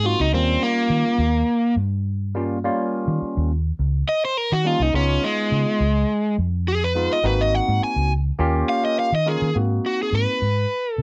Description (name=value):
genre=straight-eighth soul blues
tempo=104 BPM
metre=4/4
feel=swing 54% on 16ths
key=unclear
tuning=A4 = 443 Hz
part: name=crunchy overdriven guitar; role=melody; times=0.0-11.0 s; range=Ab3 to Ab5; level=-23 LUFS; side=equal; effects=none
part: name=barky tine electric piano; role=accompaniment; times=0.0-10.4 s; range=G3 to Bb4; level=-27 LUFS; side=equal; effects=phaser
part: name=vintage muted fingered electric bass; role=bass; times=0.0-11.0 s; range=Ab1 to Eb3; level=-24 LUFS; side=equal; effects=none
room=light reverb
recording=none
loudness=-21 LUFS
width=mono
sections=0.0-9.5 A section; 9.5-11.0 B section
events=overdriven electric guitar solo 0.0-9.5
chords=0.3 Eb9; 4.9 Db9; 7.2 Ab9; 8.4 Eb9; 9.5 Ab9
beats=| 0.34 0.91 1.49 2.06 | 2.64 3.21 3.79 4.37 | 4.94 5.52 6.09 6.67 | 7.24 7.82 8.40 8.97 | 9.55 10.13 10.70